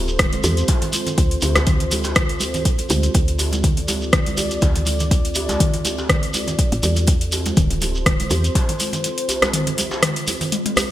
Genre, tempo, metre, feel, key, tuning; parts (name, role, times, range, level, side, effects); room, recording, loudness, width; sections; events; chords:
afro house; 122 BPM; 4/4; swing 55% on 16ths; D minor; A4 = 440 Hz
dark analog pad; sustained chords; 0.0-10.9 s; C4 to D5; -27 LUFS; equal; chorus, sidechain pumping
woody FM bass; bass; 0.0-8.5 s; D1 to E2; -23 LUFS; equal; sidechain pumping
shekere; percussion; 0.1-10.9 s; -28 LUFS; right 1 dB
afro-pop drum kit; drums; 0.2-10.9 s; hi-hat, rim click, toms; -22 LUFS; left 1 dB; overdrive
electronic kick drum; drums; 0.2-8.7 s; -18 LUFS; equal
congas; percussion; 0.2-10.9 s; -29 LUFS; right 3 dB
djembe; percussion; 0.4-10.9 s; -31 LUFS; equal
light reverb, digital ambience; bright 1980s-style digital production; -17 LUFS; side -13 dB against mid
0.0-10.9 A section
drum fill 10.5-10.9
0.0 Dm7